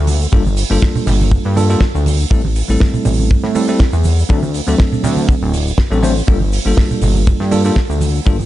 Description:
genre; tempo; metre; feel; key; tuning
nu-disco, nu disco; 121 BPM; 4/4; swing 54% on 16ths; G dorian; A4 = 440 Hz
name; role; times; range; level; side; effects
chorused synth bass; bass; 0.0-8.5 s; D1 to A2; -15 LUFS; equal; none
damped 70s drum kit; drums; 0.1-8.5 s; hi-hat, shaker, snare drum; -24 LUFS; right 2 dB; none
congas; percussion; 0.1-8.5 s; none; -22 LUFS; right 3 dB; none
bell-like tine electric piano; accompaniment; 0.3-8.4 s; F#3 to C5; -19 LUFS; moving between left 5 dB and right 4 dB; auto-pan, sidechain pumping, digital delay
kick drum; drums; 0.3-8.4 s; none; -13 LUFS; equal; none
room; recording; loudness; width
small room ambience; dark, warm production, nothing above 11.0 kHz; -12 LUFS; side -14 dB against mid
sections
0.0-8.5 A section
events
none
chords
0.0 Gm9; 2.3 Am7; 4.3 D7; 6.3 Gm9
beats
| 0.33 0.82 1.32 1.82 | 2.31 2.81 3.30 3.80 | 4.30 4.79 5.29 5.78 | 6.28 6.78 7.27 7.77 | 8.26

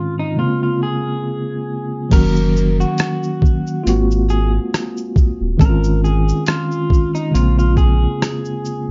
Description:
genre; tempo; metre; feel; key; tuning
lo-fi hip hop; 69 BPM; 4/4; swing 55% on 16ths; Bb minor; A4 = 440 Hz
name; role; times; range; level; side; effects
electric guitar through a small old amp; melody; 0.0-8.9 s; Eb4 to Bb4; -27 LUFS; equal; spring reverb, low-pass filter, plate reverb
tine electric piano; accompaniment; 0.0-8.9 s; Ab2 to Gb4; -21 LUFS; equal; fast tremolo, cassette tape, low-pass filter
warm sub bass; bass; 2.1-8.9 s; Eb1 to Bb1; -19 LUFS; equal; none
boom bap sampler-style drum kit; drums; 2.1-8.9 s; crash cymbal, hi-hat, kick drum, rim click, shaker; -18 LUFS; equal; none
room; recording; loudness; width
light reverb; dark, warm production, nothing above 7.5 kHz; -17 LUFS; mono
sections
0.0-2.1 A section; 2.1-8.9 B section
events
filter sweep 0.0-2.1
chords
0.4 Bbm9; 2.1 Gb6; 3.9 Ab13; 5.6 Dbmaj9/Ab; 7.3 Bbm9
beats
0.38 1.25 | 2.12 2.99 3.86 4.73 | 5.60 6.46 7.33 8.20

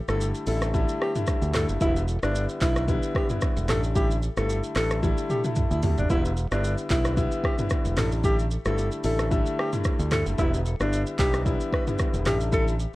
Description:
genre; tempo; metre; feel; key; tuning
afrobeats; 112 BPM; 4/4; swing 55% on 16ths; unclear; A4 = 445 Hz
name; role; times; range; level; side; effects
warm alto saxophone; melody; 0.1-12.7 s; D4 to B4; -30 LUFS; equal; ping-pong delay
clear concert grand piano; accompaniment; 0.1-12.7 s; D3 to E4; -29 LUFS; left 2 dB; none
modern bright fingered electric bass; bass; 0.1-12.8 s; E1 to D2; -27 LUFS; equal; none
deep house drum kit; drums; 0.1-12.9 s; handclaps, hi-hat, kick drum, rim click, shaker, toms; -27 LUFS; equal; none
room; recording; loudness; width
little or no reverb; worn, warbling old tape, cassette tape, warbly pitch drift; -22 LUFS; side -18 dB against mid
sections
0.0-12.9 A section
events
drum fill 5.0-6.1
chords
0.0 A7sus4; 1.8 Em7; 3.7 A7sus4; 6.1 Em7; 8.0 A7sus4; 10.4 Em7; 12.3 A7sus4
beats
0.20 0.74 1.28 | 1.81 2.35 2.88 3.42 | 3.96 4.49 5.03 5.56 | 6.10 6.63 7.17 7.71 | 8.24 8.78 9.31 9.85 | 10.38 10.92 11.46 11.99 | 12.53

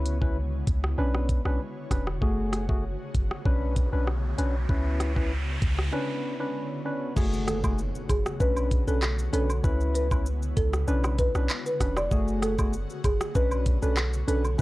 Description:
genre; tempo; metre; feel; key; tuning
dancehall; 97 BPM; 4/4; straight; B dorian; A4 = 440 Hz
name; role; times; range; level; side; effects
percussive organ stab; accompaniment; 0.0-14.6 s; A3 to B4; -31 LUFS; left 1 dB; chorus, sidechain pumping
ethereal airy pad; sustained chords; 0.0-14.6 s; B3 to F#4; -38 LUFS; left 1 dB; ensemble chorus, built-in reverb, sidechain pumping
clean 808-style bass; bass; 0.0-14.6 s; E1 to C#2; -28 LUFS; equal; none
afro-pop drum kit; drums; 0.1-14.6 s; crash cymbal, handclaps, hi-hat, kick drum, rim click, shaker; -27 LUFS; equal; none
riser and impact; sound effects; 3.4-9.6 s; none; -39 LUFS; equal; none
folk marimba with medium mallets; melody; 7.5-14.4 s; G#4 to D5; -31 LUFS; right 1 dB; none
cabasa and woodblock; percussion; 7.5-14.6 s; none; -38 LUFS; right 3 dB; none
room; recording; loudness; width
digital ambience; dry, gritty hardware recording, transformer saturation, cassette tape, faint mains hum; -24 LUFS; side -18 dB against mid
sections
0.0-7.2 A section; 7.2-14.6 B section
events
riser 3.4-7.2; break 5.9-7.2; impact 7.2-9.6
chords
0.0 C#m7; 1.0 Bmadd9; 2.2 F#madd9; 3.5 Bmadd9; 4.7 C#m7; 5.9 Bmadd9; 7.2 F#madd9; 8.4 Bmadd9; 9.6 C#m7; 10.9 Bmadd9; 12.1 F#madd9; 13.4 Bmadd9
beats
0.36 0.98 1.60 | 2.22 2.84 3.46 4.07 | 4.69 5.31 5.93 6.55 | 7.17 7.79 8.40 9.02 | 9.64 10.26 10.88 11.50 | 12.12 12.73 13.35 13.97 | 14.59

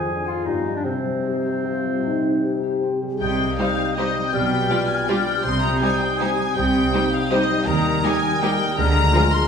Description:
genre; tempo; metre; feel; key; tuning
classical; 145-176 BPM; 3/4; rubato; C minor; A4 = 439 Hz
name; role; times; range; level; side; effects
clear clarinet; second line; 0.0-9.5 s; C4 to Eb5; -29 LUFS; equal; none
mellow hollow small flute group; second line; 0.0-9.5 s; C5 to G6; -28 LUFS; left 5 dB; none
dark bassoon; accompaniment; 0.0-9.5 s; C3 to Ab3; -28 LUFS; right 1 dB; none
concert harp; arpeggios; 0.0-9.5 s; F2 to Bb4; -27 LUFS; left 3 dB; none
mellow French horn section; sustained chords; 0.1-9.3 s; G3 to Ab4; -28 LUFS; left 1 dB; none
warm studio violin section; melody; 3.2-9.5 s; Eb5 to C6; -25 LUFS; left 2 dB; none
rich studio double bass section; bass; 3.2-9.1 s; B1 to Eb2; -26 LUFS; right 2 dB; none
warm studio cello section; bass; 3.2-9.1 s; B2 to Eb3; -26 LUFS; right 3 dB; none
warm studio violin section; second line; 3.6-9.2 s; G4 to D5; -30 LUFS; left 2 dB; none
rich studio viola section; accompaniment; 3.6-9.2 s; F3 to F4; -28 LUFS; right 2 dB; none
room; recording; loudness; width
wet recital hall reverb, RT60 1.5 s; heard from further back in the room; -18 LUFS; side -6 dB against mid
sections
0.0-3.2 A section; 3.2-9.5 A section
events
none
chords
0.5 G7; 0.8 Cm; 4.3 G7/B; 5.5 Cm; 7.7 Eb; 8.8 Bb7/D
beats
0.07 0.46 | 0.84 1.24 1.65 | 2.03 2.43 2.83 | 3.21 3.59 3.98 | 4.34 4.70 5.09 | 5.45 5.82 6.20 | 6.57 6.94 7.32 | 7.67 8.04 8.42 | 8.78 9.14

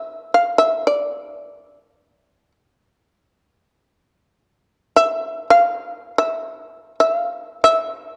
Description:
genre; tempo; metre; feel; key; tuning
japanese traditional, Japanese chamber music; free time; none; none; unclear; A4 = 440 Hz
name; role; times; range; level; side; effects
shamisen; solo; 0.0-8.2 s; D5 to F5; -18 LUFS; equal; none
room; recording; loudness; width
moderate recital hall reverb, RT60 1.7 s; dark, warm production; -19 LUFS; mono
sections
0.0-8.2 A section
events
none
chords
none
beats
free time

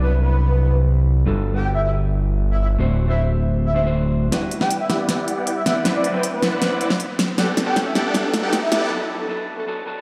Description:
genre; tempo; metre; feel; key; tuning
future bass; 157 BPM; 4/4; half-time; E minor; A4 = 440 Hz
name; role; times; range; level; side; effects
breathy flute-like synth lead; melody; 0.0-8.8 s; B4 to G5; -28 LUFS; equal; ensemble chorus, dub echo
mellow electric guitar; accompaniment; 0.0-10.0 s; F#3 to F#5; -29 LUFS; equal; none
fat analog bass; bass; 0.0-4.3 s; D1 to C2; -20 LUFS; equal; none
supersaw chords; riff; 4.3-8.9 s; B3 to G5; -27 LUFS; equal; vintage 12-bit sampler grit, low-pass filter, dub echo
pop drum kit; drums; 4.3-8.8 s; hi-hat, snare drum; -25 LUFS; equal; none
riser; sound effects; 6.1-8.9 s; none; -34 LUFS; equal; none
room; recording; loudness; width
moderate lush hall reverb, RT60 1.6 s; played on a big sound system in a bare room, large studio reverb, high-pass filter; -20 LUFS; mono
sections
0.0-4.3 A section; 4.3-10.0 B section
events
build-up 4.3-10.0; drum fill 4.3-8.9; filter sweep on supersaw synth 4.3-10.0; break 8.9-10.0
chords
0.0 Cmaj9#11; 1.3 Gmaj9; 2.8 D7; 4.3 Em9; 5.9 Cmaj9#11; 7.4 Gmaj9; 8.9 D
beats
0.12 0.50 0.88 | 1.27 1.65 2.03 2.41 | 2.79 3.18 3.56 3.94 | 4.32 4.71 5.09 5.47 | 5.85 6.23 6.62 7.00 | 7.38 7.76 8.14 8.53 | 8.91 9.29 9.67

